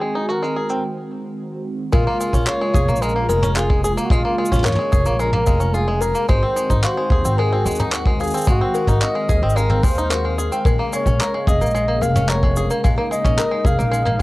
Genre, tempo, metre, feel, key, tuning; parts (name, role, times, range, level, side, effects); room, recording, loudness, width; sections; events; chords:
folktronica; 110 BPM; 4/4; straight; Bb minor; A4 = 440 Hz
mellow flugelhorn; melody; 0.0-14.2 s; F4 to F5; -22 LUFS; equal; vintage 12-bit sampler grit, cassette tape
warm analog pad; sustained chords; 0.0-14.2 s; Db3 to F5; -27 LUFS; equal; chorus
bluegrass banjo; arpeggios; 0.0-14.2 s; Ab3 to Bb4; -25 LUFS; equal; vintage 12-bit sampler grit
soft brush drum kit; drums; 0.3-14.2 s; cabasa, handclaps, toms; -25 LUFS; equal; low-pass filter on toms, cassette tape, low-pass filter on snare, low-pass filter on perc, low-pass filter on room
buzzing kalimba; second line; 1.9-14.2 s; Bb4 to F5; -28 LUFS; left 6 dB; tape echo
upright bass; bass; 1.9-14.2 s; F1 to Eb2; -21 LUFS; equal; tube saturation
kick drum; drums; 1.9-14.2 s; -18 LUFS; equal; cassette tape
light reverb; home recording on cassette, low-pass filter; -16 LUFS; side -19 dB against mid
0.0-1.9 A section; 1.9-14.2 B section
break 0.8-1.9
0.0 Ab7; 1.9 Bbm7; 6.3 Ab7; 10.7 Bbm7